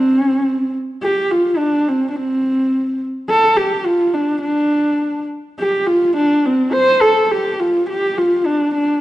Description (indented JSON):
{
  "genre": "mongolian traditional",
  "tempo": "105 BPM",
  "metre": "4/4",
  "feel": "straight",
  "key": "C zhi mode",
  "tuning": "A4 = 441 Hz",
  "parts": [
    { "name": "dark horsehead fiddle", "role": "solo", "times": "0.0-9.0 s", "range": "C4 to C5", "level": "-14 LUFS", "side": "equal", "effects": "none" }
  ],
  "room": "wet recital hall reverb, RT60 1.5 s",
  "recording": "dark, warm production, nothing above 10.4 kHz",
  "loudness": "-14 LUFS",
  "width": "side -15 dB against mid",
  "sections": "0.0-1.0 A section; 1.0-9.0 B section",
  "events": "none",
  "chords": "none"
}